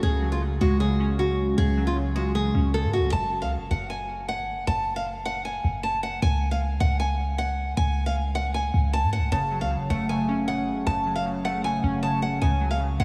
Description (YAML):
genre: hip hop, trap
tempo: 155 BPM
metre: 4/4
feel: half-time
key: F# harmonic minor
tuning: A4 = 440 Hz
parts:
  - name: nylon-string guitar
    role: melody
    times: 0.0-13.0 s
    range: E#4 to A5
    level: -30 LUFS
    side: equal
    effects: diffuse ambient delay
  - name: glassy digital keys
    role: accompaniment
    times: 0.0-3.2, 9.3-13.0 s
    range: C#3 to C#4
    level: -29 LUFS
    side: equal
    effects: chorus
  - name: clean 808-style bass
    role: bass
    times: 0.0-13.0 s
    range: F#1 to G#2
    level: -29 LUFS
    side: equal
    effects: none
room: moderate church reverb, RT60 3.8 s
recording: dreamy mix soaked in reverb, small room ambience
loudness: -25 LUFS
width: mono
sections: 0.0-3.1 A section; 3.1-13.0 B section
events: none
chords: 0.0 C#sus4; 3.1 F#5; 6.2 C#sus4; 9.3 F#m; 12.4 C#sus4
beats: | 0.03 0.42 0.80 1.19 | 1.58 1.97 2.35 2.74 | 3.13 3.51 3.90 4.29 | 4.67 5.06 5.45 5.84 | 6.22 6.61 7.00 7.38 | 7.77 8.16 8.55 8.93 | 9.32 9.71 10.09 10.48 | 10.87 11.26 11.64 12.03 | 12.42 12.80